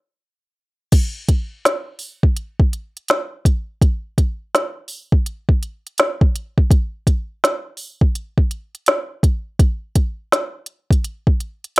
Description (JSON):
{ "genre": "R&B", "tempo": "83 BPM", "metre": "4/4", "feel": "swing 63% on 16ths", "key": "none", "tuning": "none", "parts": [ { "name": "organic electronic drum kit", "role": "drums", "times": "0.9-11.8 s", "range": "crash cymbal, hi-hat, kick drum, snare drum", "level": "-15 LUFS", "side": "equal", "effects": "none" } ], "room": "light reverb", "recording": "rough home demo mix", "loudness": "-17 LUFS", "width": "side -23 dB against mid", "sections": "0.9-11.8 A section", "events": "stop 0.0-0.9", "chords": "none" }